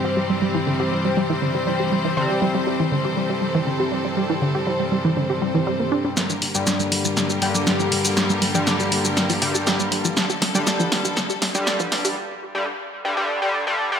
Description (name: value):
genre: melodic techno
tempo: 120 BPM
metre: 4/4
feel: straight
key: G dorian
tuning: A4 = 440 Hz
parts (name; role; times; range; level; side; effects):
- bright studio string section; sustained chords; 0.0-12.1 s; D3 to C5; -27 LUFS; left 1 dB; none
- wide unison pluck; arpeggios; 0.0-12.1 s; D3 to G4; -24 LUFS; right 1 dB; dub echo
- sync-sweep polysynth; stabs; 0.0-14.0 s; G2 to C4; -24 LUFS; left 1 dB; chorus, dub echo
- analog drone; drone; 0.0-6.2 s; G2 to G3; -35 LUFS; equal; chorus
- punchy analog drum machine; drums; 6.2-12.1 s; hi-hat, shaker, snare drum; -22 LUFS; equal; none
room: moderate concert hall reverb, RT60 2.0 s, digital ambience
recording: high-pass filter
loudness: -19 LUFS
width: side -7 dB against mid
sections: 0.0-6.2 A section; 6.2-14.0 B section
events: filter sweep on synth arpeggio sound 0.0-6.2, 6.2-14.0; build-up 6.2-14.0; drum fill 6.2-12.2; break 12.2-14.0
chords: 0.0 C; 6.2 Gm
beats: | 0.17 0.67 1.17 1.67 | 2.17 2.67 3.17 3.67 | 4.17 4.67 5.17 5.67 | 6.17 6.67 7.17 7.67 | 8.17 8.67 9.17 9.67 | 10.17 10.67 11.17 11.67 | 12.17 12.67 13.17 13.67